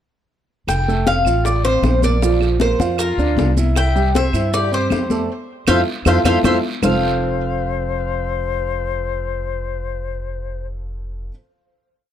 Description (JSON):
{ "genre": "latin, Cuban son and guajira", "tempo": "156 BPM", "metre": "4/4", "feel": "straight", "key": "F major", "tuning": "A4 = 440 Hz", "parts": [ { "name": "Cuban tres", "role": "melody", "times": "0.7-11.3 s", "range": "Bb4 to G5", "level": "-22 LUFS", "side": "left 2 dB", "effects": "tape echo" }, { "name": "upright bass", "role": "bass", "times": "0.7-11.3 s", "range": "F1 to G2", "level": "-21 LUFS", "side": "equal", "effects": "none" }, { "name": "bongos", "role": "percussion", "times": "0.7-6.9 s", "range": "none", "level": "-26 LUFS", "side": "left 7 dB", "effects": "none" }, { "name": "claves", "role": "percussion", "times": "0.7-6.9 s", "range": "none", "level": "-30 LUFS", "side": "right 18 dB", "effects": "none" }, { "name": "congas", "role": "percussion", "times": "0.7-6.9 s", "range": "none", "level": "-23 LUFS", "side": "left 3 dB", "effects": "none" }, { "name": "guiro", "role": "percussion", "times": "0.7-6.9 s", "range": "none", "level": "-36 LUFS", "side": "right 6 dB", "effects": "none" }, { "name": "maracas", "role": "percussion", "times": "0.7-6.9 s", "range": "none", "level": "-34 LUFS", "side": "right 20 dB", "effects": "none" }, { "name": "warm grand piano", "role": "arpeggios", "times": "0.9-11.3 s", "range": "F3 to F5", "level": "-22 LUFS", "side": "right 5 dB", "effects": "none" }, { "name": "bright silver concert flute", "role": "second line", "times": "3.0-10.7 s", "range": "F4 to E5", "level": "-25 LUFS", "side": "left 12 dB", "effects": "none" } ], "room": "small room reverb", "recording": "dry, close 1970s-style studio recording", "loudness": "-16 LUFS", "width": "side -10 dB against mid", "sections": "0.7-6.8 A section; 6.8-9.9 final chord", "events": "band accent 5.3-6.8", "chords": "0.7 Fadd9; 2.2 Bb; 3.8 C; 5.3 Fmaj7; 6.8 F", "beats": "| 0.69 1.07 1.46 1.84 | 2.22 2.60 2.99 3.37 | 3.76 4.14 4.52 4.91 | 5.29 5.68 6.06 6.44 | 6.83 7.21 7.59 7.98 | 8.36 8.74 9.13 9.51" }